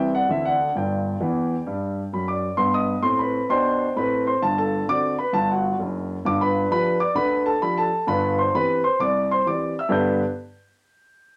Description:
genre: jazz, stride piano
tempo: 130 BPM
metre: 4/4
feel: swing 66% on 8ths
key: G major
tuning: A4 = 441 Hz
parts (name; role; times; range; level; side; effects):
- warm concert grand piano; solo; 0.0-10.2 s; F#1 to G6; -22 LUFS; equal; none
room: moderate studio reverb, RT60 0.5 s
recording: none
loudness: -22 LUFS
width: mono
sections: 0.0-2.6 A section; 2.6-9.9 B section; 9.9-11.4 C section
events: grand piano fill 1.2-2.6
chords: 0.3 D9; 0.7 G5; 2.6 Cm/G; 4.4 D7/G; 6.2 G7; 8.1 C/G; 9.9 G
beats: 0.28 | 0.73 1.19 1.65 2.11 | 2.57 3.02 3.48 3.94 | 4.40 4.86 5.32 5.78 | 6.24 6.70 7.16 7.62 | 8.08 8.54 9.00 9.46 | 9.92

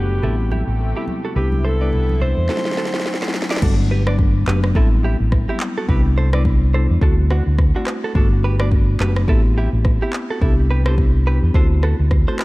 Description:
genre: afrobeats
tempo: 106 BPM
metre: 4/4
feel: swing 58% on 16ths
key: A dorian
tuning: A4 = 441 Hz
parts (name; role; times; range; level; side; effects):
- warm alto saxophone; melody; 0.0-3.3 s; G4 to C5; -26 LUFS; equal; low-pass filter, digital delay
- marimba with medium mallets; accompaniment; 0.0-12.4 s; F#3 to G4; -25 LUFS; left 2 dB; low-pass filter
- lush unison pad; sustained chords; 0.0-3.6 s; C3 to B4; -33 LUFS; equal; chorus, low-pass filter
- direct-recorded clean electric guitar; riff; 0.0-12.4 s; D4 to D5; -28 LUFS; right 4 dB; spring reverb, low-pass filter, digital delay
- fingered electric bass; bass; 0.0-12.2 s; F#1 to E2; -17 LUFS; equal; none
- congas; percussion; 0.2-2.4 s; none; -29 LUFS; right 2 dB; none
- afro-pop drum kit; drums; 2.5-12.4 s; crash cymbal, handclaps, kick drum, rim click, snare drum; -19 LUFS; equal; none
room: little or no reverb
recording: dark, warm production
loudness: -15 LUFS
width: side -20 dB against mid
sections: 0.0-3.6 A section; 3.6-12.4 B section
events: filter sweep 0.0-3.6; break 2.5-3.6; drum fill 2.5-3.6; hi-hats muted 3.6-12.4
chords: 0.2 Am7; 1.4 Cmaj7; 2.5 D7; 3.6 Gmaj7; 4.8 Am7; 5.9 Cmaj7; 7.0 D7; 8.2 Gmaj7; 9.3 Am7; 10.4 Cmaj7; 11.5 D7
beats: 0.23 0.79 | 1.36 1.92 2.49 3.06 | 3.62 4.19 4.75 5.32 | 5.89 6.45 7.02 7.58 | 8.15 8.72 9.28 9.85 | 10.41 10.98 11.55 12.11

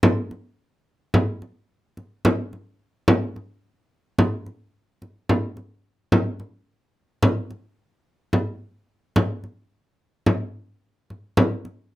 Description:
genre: contemporary instrumental, contemporary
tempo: 217 BPM (eighths)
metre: 11/8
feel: straight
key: none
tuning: none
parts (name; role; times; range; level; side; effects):
- frame drum; percussion; 0.0-11.8 s; none; -19 LUFS; equal; none
room: moderate studio ambience, RT60 0.5 s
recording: none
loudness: -21 LUFS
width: side -16 dB against mid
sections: 0.0-12.0 A section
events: none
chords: none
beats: | 0.03 0.31 0.59 0.86 1.14 1.42 1.70 1.97 2.25 2.53 2.80 | 3.08 3.36 3.63 3.91 4.19 4.46 4.74 5.02 5.29 5.57 5.85 | 6.12 6.40 6.68 6.95 7.23 7.51 7.78 8.06 8.34 8.61 8.89 | 9.16 9.44 9.72 9.99 10.27 10.55 10.82 11.10 11.38 11.65

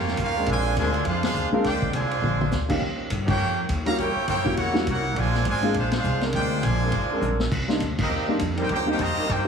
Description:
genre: jazz, big band swing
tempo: 204 BPM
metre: 4/4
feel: swing 60% on 8ths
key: Bb major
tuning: A4 = 438 Hz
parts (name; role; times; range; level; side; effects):
- brilliant trumpet section; melody; 0.0-9.5 s; C4 to Bb5; -27 LUFS; right 1 dB; none
- muted trombone section; second line; 0.0-9.5 s; Db3 to G4; -33 LUFS; right 2 dB; none
- upright bass; bass; 0.0-9.5 s; Ab1 to G2; -27 LUFS; equal; none
- vintage drum kit; drums; 0.1-9.4 s; crash cymbal, hi-hat, kick drum, ride cymbal, snare drum, toms; -30 LUFS; left 1 dB; none
- clear trombone section; sustained chords; 0.4-9.2 s; F3 to Bb4; -32 LUFS; equal; none
- warm baby grand piano; accompaniment; 1.5-9.5 s; G3 to Gb4; -27 LUFS; left 1 dB; none
room: moderate recital hall reverb, RT60 1.6 s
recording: heavily compressed radio sound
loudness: -21 LUFS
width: side -6 dB against mid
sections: 0.0-9.5 A section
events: band accent 1.2, 3.2, 5.9, 8.0; drum fill 2.2, 7.2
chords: 0.5 Bb9; 2.8 Eb9; 4.0 Edim7; 5.2 Bb9; 7.5 Cm7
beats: 0.17 | 0.46 0.75 1.04 1.34 | 1.63 1.93 2.22 2.51 | 2.81 3.10 3.39 3.69 | 3.98 4.27 4.57 4.86 | 5.16 5.45 5.75 6.04 | 6.34 6.63 6.93 7.22 | 7.51 7.81 8.10 8.40 | 8.69 8.98 9.28

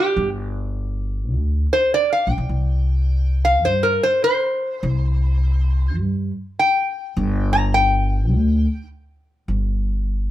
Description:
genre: acoustic country blues, solo or duo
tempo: 103 BPM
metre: 4/4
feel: swing 63% on 8ths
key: G minor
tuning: A4 = 440 Hz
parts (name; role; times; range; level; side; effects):
- metal-body resonator slide guitar; melody; 0.0-8.9 s; G4 to Bb5; -18 LUFS; equal; plate reverb
- upright bass; bass; 0.2-10.3 s; G1 to G2; -19 LUFS; equal; none
room: moderate small room reverb, RT60 0.5 s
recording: heard from further back in the room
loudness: -17 LUFS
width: side -13 dB against mid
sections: 0.0-10.3 A section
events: resonator guitar played with a steel bar solo 0.0-10.3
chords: 0.0 G5; 2.5 C5; 7.2 G5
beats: | 0.17 0.75 1.33 1.91 | 2.50 3.08 3.66 4.24 | 4.83 5.41 5.99 6.58 | 7.16 7.74 8.32 8.91 | 9.49 10.07

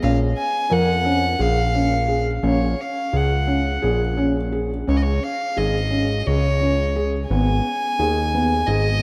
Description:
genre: contemporary instrumental, chamber music in an uneven meter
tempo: 174 BPM (eighths)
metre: 7/8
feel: straight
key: unclear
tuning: A4 = 440 Hz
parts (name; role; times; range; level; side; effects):
- warm violin; melody; 0.0-9.0 s; C#5 to G#5; -26 LUFS; equal; none
- felt-muted upright piano; arpeggios; 0.0-8.8 s; B3 to A#4; -26 LUFS; equal; none
- fat analog bass; bass; 0.0-9.0 s; G#1 to E#2; -23 LUFS; equal; none
room: wet cathedral reverb, RT60 4.7 s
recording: in a vast, echoing space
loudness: -21 LUFS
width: mono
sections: 0.0-9.0 A section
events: none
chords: 0.0 A#m; 2.4 F#add9/A#; 4.9 C#5; 7.3 G#m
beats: | 0.03 0.37 0.72 1.06 1.40 1.75 2.09 | 2.44 2.78 3.13 3.48 3.83 4.18 4.53 | 4.88 5.22 5.57 5.92 6.26 6.61 6.95 | 7.30 7.64 7.98 8.33 8.67 9.01

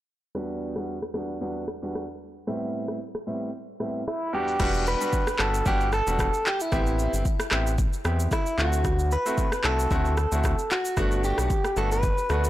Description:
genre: afrobeats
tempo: 113 BPM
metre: 4/4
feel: swing 55% on 16ths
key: E minor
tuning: A4 = 439 Hz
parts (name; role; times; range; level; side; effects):
- bright grand piano; accompaniment; 0.3-12.5 s; E2 to G4; -30 LUFS; equal; none
- afro-pop drum kit; drums; 0.4-12.5 s; crash cymbal, handclaps, kick drum, rim click, shaker; -28 LUFS; equal; overdrive
- direct-recorded clean electric guitar; melody; 4.1-12.5 s; E4 to B4; -27 LUFS; equal; ping-pong delay
- round analog bass; bass; 4.6-12.5 s; E1 to E2; -26 LUFS; equal; none
room: light reverb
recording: blown-out, overdriven recording, overdrive, low-pass filter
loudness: -23 LUFS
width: side -14 dB against mid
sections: 0.3-4.6 A section; 4.6-12.5 B section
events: filter sweep 0.3-4.6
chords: 0.3 Em9; 2.5 Am9; 4.3 Em9; 6.7 Am9; 8.6 D9; 11.0 Gmaj7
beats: | 0.35 0.88 1.41 1.94 | 2.47 3.00 3.54 4.07 | 4.60 5.13 5.66 6.19 | 6.72 7.25 7.78 8.31 | 8.85 9.38 9.91 10.44 | 10.97 11.50 12.03

